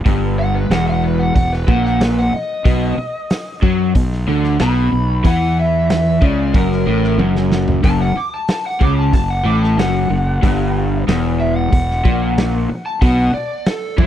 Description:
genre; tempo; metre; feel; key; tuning
blues rock power trio and southern rock; 93 BPM; 4/4; straight; unclear; A4 = 440 Hz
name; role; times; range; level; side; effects
fuzz fingered electric bass; bass; 0.0-14.1 s; E1 to F#2; -19 LUFS; equal; overdrive
crunchy overdriven guitar; riff; 0.1-14.1 s; E2 to F#3; -18 LUFS; left 1 dB; none
raw garage drum kit; drums; 0.1-14.1 s; hi-hat, kick drum, snare drum, toms; -16 LUFS; equal; none
lead guitar through a small cranked amp; melody; 0.4-14.1 s; E4 to D6; -22 LUFS; equal; overdrive
room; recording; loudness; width
small room ambience; dry, close 1970s-style studio recording; -14 LUFS; side -11 dB against mid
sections
0.0-14.1 A section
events
lead electric guitar solo 0.0-14.1; drum fill 7.2-7.8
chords
0.0 Em; 2.7 B; 5.2 F#m7; 10.4 Em; 13.0 B5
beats
| 0.06 0.71 1.36 2.01 | 2.66 3.31 3.95 4.60 | 5.25 5.90 6.54 7.19 | 7.84 8.49 9.13 9.78 | 10.43 11.07 11.72 12.37 | 13.01 13.66

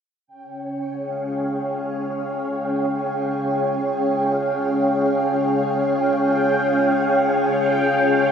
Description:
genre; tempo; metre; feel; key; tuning
ambient, sequencer-driven space music; free time; none; none; Db lydian; A4 = 441 Hz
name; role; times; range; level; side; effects
string machine, full ensemble; sustained chords; 0.3-8.3 s; Db4 to F5; -20 LUFS; equal; ensemble chorus
bubbling stepped-filter texture; texture; 0.3-8.3 s; G5; -26 LUFS; right 2 dB; chorus, built-in reverb
room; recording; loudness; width
wet huge ambient reverb, RT60 8.3 s; dark, warm production; -19 LUFS; side -7 dB against mid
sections
0.3-8.3 A section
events
fade-in on string machine 0.3-8.3; fade-in on synth texture 0.3-8.3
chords
0.3 Db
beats
free time

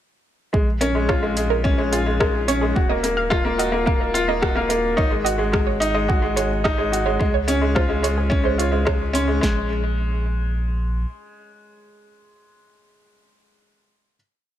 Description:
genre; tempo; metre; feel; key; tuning
piano and strings electronica; 108 BPM; 4/4; straight; unclear; A4 = 440 Hz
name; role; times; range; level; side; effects
warbly dusty pluck; arpeggios; 0.5-9.7 s; Ab4 to C6; -27 LUFS; right 5 dB; chorus, sidechain pumping, ping-pong delay
clear upright piano; riff; 0.5-14.2 s; Ab3 to Gb4; -21 LUFS; left 1 dB; ping-pong delay
warm sub bass; bass; 0.5-11.1 s; Eb1 to Db2; -25 LUFS; equal; sidechain pumping
deep house drum kit; drums; 0.5-9.6 s; kick drum, snare drum; -22 LUFS; equal; overdrive, studio reverb
deep house drum kit; drums; 0.8-9.3 s; hi-hat, rim click; -27 LUFS; left 1 dB; overdrive, studio reverb
room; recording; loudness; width
light reverb, digital ambience; none; -18 LUFS; side -11 dB against mid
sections
0.5-9.4 drop; 9.4-11.6 final chord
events
drop 0.5-9.4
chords
0.5 Bbm7; 2.8 Ebmadd9; 5.0 Ab7sus4; 7.2 Dbmaj7; 9.4 Absus2/Bb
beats
| 0.54 1.09 1.65 2.20 | 2.76 3.31 3.87 4.43 | 4.98 5.54 6.09 6.65 | 7.20 7.76 8.31 8.87 | 9.43 9.98 10.54 11.09

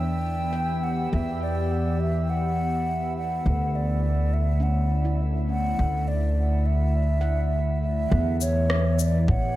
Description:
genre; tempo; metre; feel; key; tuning
ambient dub; 103 BPM; 4/4; swing 57% on 16ths; E dorian; A4 = 440 Hz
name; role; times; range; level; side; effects
mellow hollow concert flute; melody; 0.0-9.6 s; C#5 to G5; -29 LUFS; right 1 dB; dub echo
airy breathy pad; sustained chords; 0.0-9.6 s; D3 to G4; -32 LUFS; left 1 dB; chorus
handpan; arpeggios; 0.0-9.3 s; C#4 to G5; -42 LUFS; equal; dub echo
upright bass; bass; 0.0-9.6 s; D2 to A2; -23 LUFS; equal; none
drifting glass-harmonics texture; texture; 0.0-8.1 s; E4 to E5; -42 LUFS; right 3 dB; chorus, built-in reverb
electronic cabasa and rim click; drums; 0.3-9.1 s; none; -30 LUFS; left 1 dB; overdrive, low-pass filter on perc, low-pass filter on snare, low-pass filter on room
electronic kick drum; drums; 9.3-9.4 s; none; -26 LUFS; equal; none
room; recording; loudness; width
moderate spring reverb, RT60 1.8 s, digital ambience; none; -22 LUFS; side -15 dB against mid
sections
0.0-8.1 A section; 8.1-9.6 B section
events
filter sweep on handpan 0.0-8.1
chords
0.0 Emadd9; 3.5 Dadd9; 8.1 Em9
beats
0.55 | 1.13 1.71 2.29 2.88 | 3.46 4.04 4.62 5.21 | 5.79 6.37 6.95 7.54 | 8.12 8.70 9.28

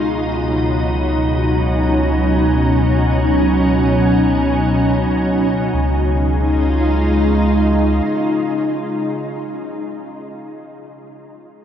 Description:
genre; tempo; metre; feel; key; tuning
ambient; free time; none; none; Db mixolydian; A4 = 440 Hz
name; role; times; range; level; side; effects
soft additive organ-like pad; sustained chords; 0.0-9.6 s; Cb3 to F4; -16 LUFS; equal; ensemble chorus, built-in reverb
warm sub bass; bass; 0.0-8.0 s; Db2; -19 LUFS; equal; none
room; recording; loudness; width
wet huge ambient reverb, RT60 9.2 s; worn, warbling old tape, cassette tape, warbly pitch drift; -14 LUFS; side -9 dB against mid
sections
0.0-5.7 A section; 5.7-8.8 B section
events
none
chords
0.0 Cb; 5.7 Db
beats
free time

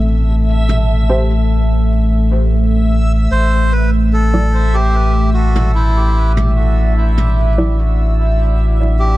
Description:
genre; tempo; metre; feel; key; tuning
ambient dub; 74 BPM; 4/4; straight; unclear; A4 = 439 Hz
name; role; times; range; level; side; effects
deep dark ambient pad; sustained chords; 0.0-9.2 s; A3 to A5; -21 LUFS; equal; chorus, built-in reverb
warm sub bass; bass; 0.0-9.2 s; A1; -13 LUFS; equal; none
backwards swelling texture; texture; 0.0-9.2 s; E5; -27 LUFS; right 2 dB; built-in reverb
toms; drums; 0.7-7.3 s; none; -25 LUFS; equal; none
filtered dub chord stab; stabs; 1.1-7.8 s; F#3 to D5; -24 LUFS; right 1 dB; chorus, dub echo
melodica; melody; 3.3-9.2 s; E4 to C5; -20 LUFS; equal; dub echo
room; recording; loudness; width
little or no reverb; dark, warm production, vinyl crackle; -11 LUFS; side -16 dB against mid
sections
0.0-9.2 A section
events
filter sweep on ambient pad 0.0-9.2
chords
0.0 Am; 3.3 Dadd9/A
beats
| 0.07 0.88 1.70 2.51 | 3.32 4.13 4.94 5.75 | 6.56 7.37 8.18 8.99

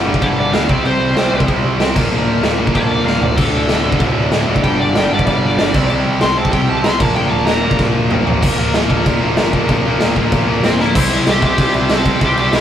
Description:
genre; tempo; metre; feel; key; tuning
punk rock; 190 BPM; 4/4; straight; unclear; A4 = 437 Hz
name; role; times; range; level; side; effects
distorted electric guitar; riff; 0.0-12.6 s; D2 to C5; -20 LUFS; left 5 dB; overdrive
heavy high-gain guitar; riff; 0.0-12.6 s; D2 to C4; -25 LUFS; right 1 dB; none
tight distorted guitar; riff; 0.0-12.6 s; D2 to C5; -20 LUFS; right 3 dB; distortion
growling picked electric bass; bass; 0.0-12.6 s; D1 to D2; -23 LUFS; equal; overdrive
raw garage drum kit; drums; 0.1-12.6 s; crash cymbal, kick drum, snare drum, toms; -16 LUFS; equal; none
high-gain lead guitar; melody; 0.2-7.8, 10.6-12.6 s; C4 to C6; -20 LUFS; equal; distortion
room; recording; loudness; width
light reverb; rough rehearsal-room recording; -12 LUFS; side -10 dB against mid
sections
0.0-8.4 A section; 8.4-11.0 B section; 11.0-12.6 C section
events
lead electric guitar solo 0.0-8.4; drum fill 3.1-3.4, 7.8-8.4, 10.8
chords
0.0 G5; 0.7 C5; 2.0 Bb/D; 3.4 D5; 4.6 G5; 5.7 C5; 7.0 Bb/D; 11.0 C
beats
0.22 0.54 | 0.85 1.17 1.49 1.80 | 2.12 2.43 2.75 3.06 | 3.38 3.69 4.01 4.32 | 4.64 4.95 5.27 5.58 | 5.90 6.22 6.53 6.85 | 7.16 7.48 7.79 8.11 | 8.43 8.74 9.06 9.37 | 9.69 10.01 10.32 10.64 | 10.95 11.27 11.59 11.90 | 12.22 12.53

